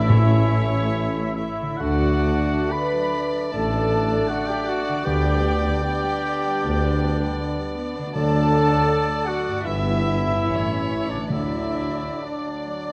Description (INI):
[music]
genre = classical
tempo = 76 BPM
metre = 4/4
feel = uneven beats, rubato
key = D major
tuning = A4 = 442 Hz
[part]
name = muted chamber violin section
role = melody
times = 0.0-12.9 s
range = C#5 to E5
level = -34 LUFS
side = equal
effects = none
[part]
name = clear oboe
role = second line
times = 0.0-12.9 s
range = D5 to B5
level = -36 LUFS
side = equal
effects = none
[part]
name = concert flute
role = second line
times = 0.0-12.9 s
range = D5 to B5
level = -36 LUFS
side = equal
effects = none
[part]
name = muted chamber violin section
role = second line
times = 0.0-12.9 s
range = D5 to B5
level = -37 LUFS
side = equal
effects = none
[part]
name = warm clarinet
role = second line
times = 0.0-12.9 s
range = B3 to D4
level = -34 LUFS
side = equal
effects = none
[part]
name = muted chamber viola section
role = accompaniment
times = 0.0-12.9 s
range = D3 to F#4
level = -39 LUFS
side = equal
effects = none
[part]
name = warm bassoon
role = accompaniment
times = 0.0-12.9 s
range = E3 to B3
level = -36 LUFS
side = equal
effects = none
[part]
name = warm French horn section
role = sustained chords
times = 0.0-12.9 s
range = D4 to B4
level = -31 LUFS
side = equal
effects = none
[part]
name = concert harp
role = arpeggios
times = 0.0-12.9 s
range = G2 to D5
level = -39 LUFS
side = equal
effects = none
[part]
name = dark trumpet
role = stabs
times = 0.0-12.9 s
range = D4 to B4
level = -31 LUFS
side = equal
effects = none
[part]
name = mellow tuba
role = bass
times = 0.0-12.1 s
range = G1 to D2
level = -30 LUFS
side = equal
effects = none
[part]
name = muted chamber cello section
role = bass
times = 0.0-12.1 s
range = G2 to D3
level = -32 LUFS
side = equal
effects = none
[part]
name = muted chamber double bass section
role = bass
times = 0.0-12.1 s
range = G1 to D2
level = -31 LUFS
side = equal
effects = none
[part]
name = timpani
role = percussion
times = 0.1-12.6 s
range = A2 to D3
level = -26 LUFS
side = equal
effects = none
[sound]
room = moderate scoring stage reverb, RT60 2.0 s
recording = none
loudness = -22 LUFS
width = mono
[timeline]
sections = 0.0-12.9 A section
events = none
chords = 0.1 A; 1.8 D; 5.1 G/D; 8.2 D; 9.7 Em/G; 10.4 A; 11.3 D